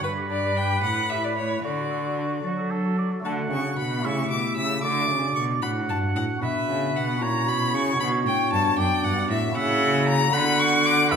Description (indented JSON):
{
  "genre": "classical, baroque-style sonata movement with continuo",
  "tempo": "76 BPM (dotted quarters)",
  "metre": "6/8",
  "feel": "straight",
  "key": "D major",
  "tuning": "A4 = 441 Hz",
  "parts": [
    { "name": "clear violin", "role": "melody", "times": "0.0-11.2 s", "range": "B4 to E6", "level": "-26 LUFS", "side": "left 5 dB", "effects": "none" },
    { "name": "warm oboe", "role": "second line", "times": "0.0-11.2 s", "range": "F#4 to F#5", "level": "-28 LUFS", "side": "right 6 dB", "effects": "none" },
    { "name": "pipe organ, stopped flute", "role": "accompaniment", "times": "0.0-11.2 s", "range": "E2 to D5", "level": "-28 LUFS", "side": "left 1 dB", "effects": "none" },
    { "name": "rich cello", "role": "bass", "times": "0.0-11.2 s", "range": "E2 to F#3", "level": "-27 LUFS", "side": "right 1 dB", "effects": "none" }
  ],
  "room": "wet recital hall reverb, RT60 1.4 s",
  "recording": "minimal, uncompressed stereo recording",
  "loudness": "-21 LUFS",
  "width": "side -6 dB against mid",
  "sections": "0.0-3.2 A section; 3.2-11.2 B section",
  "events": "none",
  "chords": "0.0 G; 0.8 A5; 1.6 D; 4.0 A7; 4.8 D; 6.4 Bm; 7.2 F#7/A#; 8.0 Bm; 9.6 F#7/C#; 10.3 Bm/D"
}